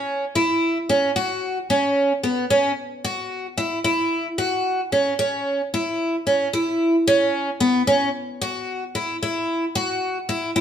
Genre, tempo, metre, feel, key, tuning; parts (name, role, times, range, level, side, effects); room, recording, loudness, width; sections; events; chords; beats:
progressive instrumental, progressive; 112 BPM; 5/4; straight; A4 = 444 Hz
picked twelve-string acoustic guitar; solo; 0.0-10.6 s; B3 to F#4; -20 LUFS; equal
moderate stone room reverb, RT60 1.0 s; band playing live in one room; -20 LUFS; side -9 dB against mid
0.0-10.6 A section
| 0.09 0.62 1.16 1.69 2.23 | 2.77 3.30 3.84 4.38 4.92 | 5.45 5.99 6.53 7.07 7.60 | 8.14 8.68 9.22 9.75 10.29